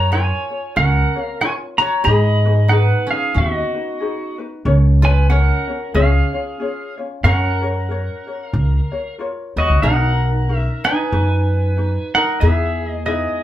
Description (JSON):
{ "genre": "Hawaiian", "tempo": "93 BPM", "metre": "4/4", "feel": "swing 59% on 8ths", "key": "F# major, B major from 9.8 s", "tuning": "A4 = 442 Hz", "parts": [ { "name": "pedal steel guitar", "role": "melody", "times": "0.0-13.4 s", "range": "F#4 to B5", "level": "-20 LUFS", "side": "right 1 dB", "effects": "none" }, { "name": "koto", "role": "second line", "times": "0.0-13.4 s", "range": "B3 to G#4", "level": "-27 LUFS", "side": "right 2 dB", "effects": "none" }, { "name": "ukulele", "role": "accompaniment", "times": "0.0-13.4 s", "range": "C#4 to C#5", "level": "-26 LUFS", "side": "left 4 dB", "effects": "none" }, { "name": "upright bass", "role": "bass", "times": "0.0-13.3 s", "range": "B1 to G#2", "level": "-15 LUFS", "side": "equal", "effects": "none" } ], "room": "wet studio ambience, RT60 0.5 s", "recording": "band playing live in one room", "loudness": "-15 LUFS", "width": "side -12 dB against mid", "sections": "0.0-9.8 A section; 9.8-13.4 B section", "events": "none", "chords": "0.0 F#maj7; 2.1 G#m7; 4.7 F#/C#; 6.0 C#; 7.2 F#maj7; 9.8 Bmaj7; 12.4 Emaj7" }